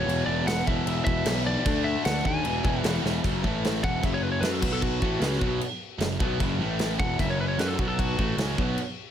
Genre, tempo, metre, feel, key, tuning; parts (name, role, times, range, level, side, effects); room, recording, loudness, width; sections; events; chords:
hard rock; 152 BPM; 4/4; straight; F# minor; A4 = 440 Hz
lightly driven lead guitar; melody; 0.0-8.8 s; F#4 to G#5; -31 LUFS; equal
heavy high-gain guitar; riff; 0.0-8.8 s; E2 to F#4; -33 LUFS; right 13 dB; distortion
overdriven electric guitar; riff; 0.0-8.8 s; E2 to F#4; -34 LUFS; equal; spring reverb
overdriven semi-hollow guitar; riff; 0.0-8.8 s; E2 to F#4; -33 LUFS; left 11 dB
fuzz picked electric bass; bass; 0.0-8.8 s; E1 to F#2; -29 LUFS; equal; overdrive
big rock drum kit; drums; 0.1-8.9 s; crash cymbal, kick drum, snare drum; -29 LUFS; equal
light reverb, small room ambience; -24 LUFS; side -9 dB against mid
0.0-3.2 A section; 3.2-9.1 B section
drum fill 3.0; lead electric guitar solo 3.2-9.1
0.0 E5; 1.7 D5; 2.4 E; 3.2 F#5; 3.4 A5; 3.8 F#5; 4.6 B5; 5.0 F#m; 6.6 A5; 7.0 F#5; 7.8 B5; 8.2 F#m